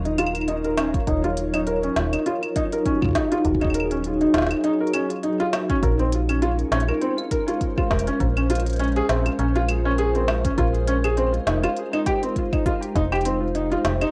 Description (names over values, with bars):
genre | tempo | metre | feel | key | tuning
IDM | 101 BPM | 4/4 | swing 56% on 16ths | Eb dorian | A4 = 440 Hz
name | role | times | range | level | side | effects
glassy FM pad | sustained chords | 0.0-14.1 s | Gb3 to Db5 | -28 LUFS | equal | ensemble chorus, built-in reverb, phaser
metallic FM bass | bass | 0.0-14.0 s | Eb1 to Bb1 | -27 LUFS | equal | none
felt-muted upright piano | arpeggios | 0.1-14.1 s | C4 to Bb4 | -26 LUFS | equal | vintage 12-bit sampler grit, low-pass filter, analog delay
organic electronic drum kit | drums | 0.1-14.1 s | claves, hi-hat, snare drum | -30 LUFS | equal | cassette tape
electronic kick drum | drums | 0.9-13.1 s | none | -27 LUFS | equal | cassette tape
room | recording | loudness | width
wet studio reverb, RT60 0.6 s | home recording on cassette | -22 LUFS | mono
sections
0.0-14.1 A section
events
filter sweep on felt piano 0.0-14.1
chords
0.0 Ebm9; 5.5 Bbm9; 11.5 Fm9